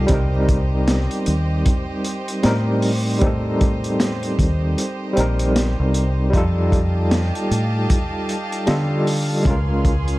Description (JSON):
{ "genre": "trip hop", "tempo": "77 BPM", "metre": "4/4", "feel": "swing 60% on 16ths", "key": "C dorian", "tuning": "A4 = 440 Hz", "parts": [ { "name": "overdriven tine electric piano", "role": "accompaniment", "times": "0.0-10.2 s", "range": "G3 to Eb5", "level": "-22 LUFS", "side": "equal", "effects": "fast tremolo, tape echo" }, { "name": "clear studio violin section", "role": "sustained chords", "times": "0.0-10.2 s", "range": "G4 to C6", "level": "-30 LUFS", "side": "right 2 dB", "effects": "vintage 12-bit sampler grit" }, { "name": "deep dub fingered electric bass", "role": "bass", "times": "0.0-10.2 s", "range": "Bb1 to D3", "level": "-20 LUFS", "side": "equal", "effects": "none" }, { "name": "crunchy breakbeat drum kit", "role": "drums", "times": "0.1-10.2 s", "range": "hi-hat, kick drum, snare drum", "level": "-21 LUFS", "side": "equal", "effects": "none" } ], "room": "little or no reverb", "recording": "dark, warm production, vinyl crackle", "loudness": "-17 LUFS", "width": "side -18 dB against mid", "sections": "0.0-10.2 A section", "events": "none", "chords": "0.1 Cm7; 6.3 F9; 9.4 Dbmaj7" }